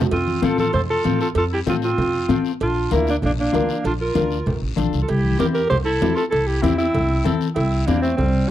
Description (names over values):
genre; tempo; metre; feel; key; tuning
latin, cumbia; 193 BPM; 4/4; straight; F major; A4 = 443 Hz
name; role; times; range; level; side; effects
flamenco guitar; accompaniment; 0.0-8.5 s; C4 to Bb4; -22 LUFS; left 7 dB; none
congas; percussion; 0.0-8.3 s; none; -26 LUFS; left 1 dB; none
timbales and cowbell; percussion; 0.0-8.3 s; none; -30 LUFS; right 5 dB; none
breathy alto saxophone; melody; 0.1-8.5 s; C4 to C5; -22 LUFS; equal; slapback echo
bright clarinet; second line; 0.1-8.5 s; G3 to A4; -28 LUFS; right 4 dB; none
upright bass; bass; 0.1-8.4 s; A1 to A2; -23 LUFS; right 1 dB; none
guiro; percussion; 0.1-8.5 s; none; -39 LUFS; left 12 dB; none
room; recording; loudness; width
little or no reverb; dry, close 1970s-style studio recording; -18 LUFS; side -12 dB against mid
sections
0.1-8.5 A section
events
none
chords
0.1 F; 2.6 Bb; 5.1 C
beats
| 0.12 0.43 0.74 1.05 | 1.36 1.67 1.98 2.29 | 2.60 2.91 3.22 3.53 | 3.84 4.16 4.46 4.78 | 5.09 5.40 5.71 6.02 | 6.33 6.64 6.95 7.26 | 7.57 7.88 8.19 8.50